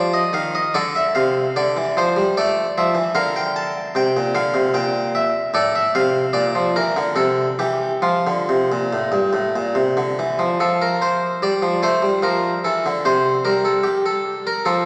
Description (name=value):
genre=classical, baroque-style suite movement for harpsichord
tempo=67-77 BPM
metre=3/4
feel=rubato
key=F major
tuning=A4 = 440 Hz
part: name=harpsichord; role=solo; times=0.0-14.9 s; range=G2 to A5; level=-19 LUFS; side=equal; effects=none
room=wet church reverb, RT60 2.9 s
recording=none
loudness=-19 LUFS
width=mono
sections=0.0-10.6 A section; 10.6-14.9 B section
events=none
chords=0.0 N.C.; 0.7 Dm; 2.4 A5; 3.1 Bb/D; 4.7 N.C.; 5.5 F/A; 6.3 Bb; 7.1 C; 8.0 F; 13.1 C5